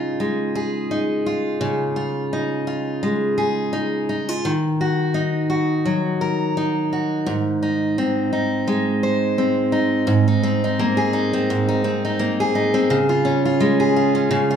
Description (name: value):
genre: pop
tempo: 85 BPM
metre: 4/4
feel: swing 55% on 16ths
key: Db major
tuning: A4 = 440 Hz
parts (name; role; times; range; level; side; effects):
- picked steel-string acoustic guitar; solo; 0.0-14.6 s; Ab2 to C5; -18 LUFS; equal; none
room: moderate large studio reverb, RT60 1.1 s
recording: band playing live in one room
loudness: -18 LUFS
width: side -8 dB against mid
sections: 0.0-10.1 A section; 10.1-14.6 B section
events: none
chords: 0.0 Dbadd9; 4.4 Ebm; 7.3 Ab; 10.1 Abadd9; 12.9 Db